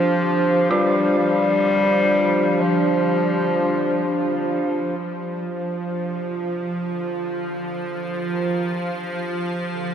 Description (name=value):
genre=dark ambient drone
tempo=63 BPM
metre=4/4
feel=straight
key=D minor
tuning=A4 = 440 Hz
part: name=warm bass clarinet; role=melody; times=0.0-9.9 s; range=C3 to G3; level=-23 LUFS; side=equal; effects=diffuse ambient delay
part: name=dark analog pad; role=sustained chords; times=0.0-9.9 s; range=D4 to F5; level=-24 LUFS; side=left 1 dB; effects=lush chorus
part: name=bowed-like drone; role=drone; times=0.0-9.9 s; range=F3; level=-25 LUFS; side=right 2 dB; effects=built-in reverb
part: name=dark detuned synth bell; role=arpeggios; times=0.7-9.9 s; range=F4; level=-29 LUFS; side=right 1 dB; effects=none
part: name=icy glass pad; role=texture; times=6.9-9.9 s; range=F5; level=-41 LUFS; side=equal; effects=chorus, built-in reverb
room=wet huge ambient reverb, RT60 7.8 s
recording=none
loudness=-19 LUFS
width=side -8 dB against mid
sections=0.0-5.0 A section; 5.0-9.9 B section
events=fade-in on analog synth pad 5.0-9.9; fade-in on ambient pad 5.0-9.9; fade-in on bass clarinet 5.0-9.9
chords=0.0 Dm